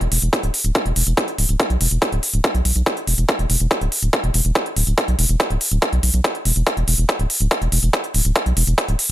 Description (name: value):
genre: psychedelic trance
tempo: 142 BPM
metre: 4/4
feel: straight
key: unclear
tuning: A4 = 440 Hz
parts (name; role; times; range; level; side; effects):
- round analog bass; bass; 0.0-9.1 s; D1 to B1; -18 LUFS; equal; none
- electronic hi-hat; drums; 0.0-9.1 s; none; -22 LUFS; equal; none
- electronic kick drum; drums; 0.3-8.9 s; none; -20 LUFS; equal; high-pass filter on kick, high-pass filter on room
room: little or no reverb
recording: none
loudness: -16 LUFS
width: side -14 dB against mid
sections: 0.0-9.1 A section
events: build-up 0.0-9.1; drum fill 6.7-9.1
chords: none